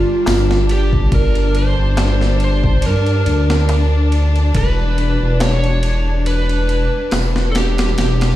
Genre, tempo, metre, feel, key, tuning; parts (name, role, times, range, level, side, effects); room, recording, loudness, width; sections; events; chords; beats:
trip hop; 70 BPM; 4/4; swing 55% on 16ths; A4 = 440 Hz
overdriven slide guitar; melody; 0.0-8.4 s; F4 to C#5; -21 LUFS; right 2 dB; tape echo
clear symphonic string section; sustained chords; 0.0-8.4 s; D4; -24 LUFS; left 3 dB
dark detuned saw bass; bass; 0.0-8.4 s; E1 to G2; -15 LUFS; equal
bowed-like drone; texture; 0.0-8.4 s; G3; -30 LUFS; right 4 dB; built-in reverb
boom bap sampler-style drum kit; drums; 0.3-8.4 s; hi-hat, kick drum, ride cymbal, snare drum; -22 LUFS; equal
darbuka; percussion; 0.3-7.3 s; -30 LUFS; left 2 dB
little or no reverb; played on a big sound system in a bare room, large studio reverb; -13 LUFS; side -14 dB against mid
0.0-8.4 A section
0.0 Gm; 4.6 Em7
0.27 | 1.13 1.98 2.84 3.70 | 4.55 5.41 6.27 7.13 | 7.98